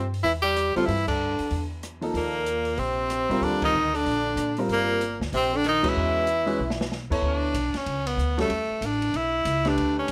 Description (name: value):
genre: modal jazz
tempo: 189 BPM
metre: 4/4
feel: swing 62% on 8ths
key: unclear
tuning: A4 = 440 Hz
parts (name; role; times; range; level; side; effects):
- bright tenor saxophone; melody; 0.0-10.1 s; A3 to G4; -28 LUFS; equal; plate reverb
- breathy tenor saxophone; second line; 0.0-6.9 s; Bb2 to G3; -33 LUFS; equal; none
- upright bass; bass; 0.0-10.1 s; G1 to Bb2; -33 LUFS; equal; none
- open jazz drum kit; drums; 0.1-10.1 s; crash cymbal, hi-hat, kick drum, ride cymbal, rim click, snare drum; -38 LUFS; equal; none
- clear grand piano; accompaniment; 0.8-10.1 s; F3 to C#5; -30 LUFS; equal; none
room: light reverb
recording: none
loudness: -25 LUFS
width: mono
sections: 0.0-7.2 A section; 7.2-10.1 B section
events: band accent 1.0, 3.6, 5.8; drum fill 6.6-6.9; tenor saxophone solo 7.2-10.1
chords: 0.0 Cadd9 (rootless); 2.2 Ebmaj9; 6.0 E69; 7.2 A9sus4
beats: 0.25 0.57 | 0.89 1.20 1.52 1.84 | 2.15 2.47 2.79 3.11 | 3.42 3.74 4.06 4.38 | 4.69 5.01 5.33 5.64 | 5.96 6.28 6.60 6.91 | 7.23 7.55 7.87 8.18 | 8.50 8.82 9.14 9.45 | 9.77 10.09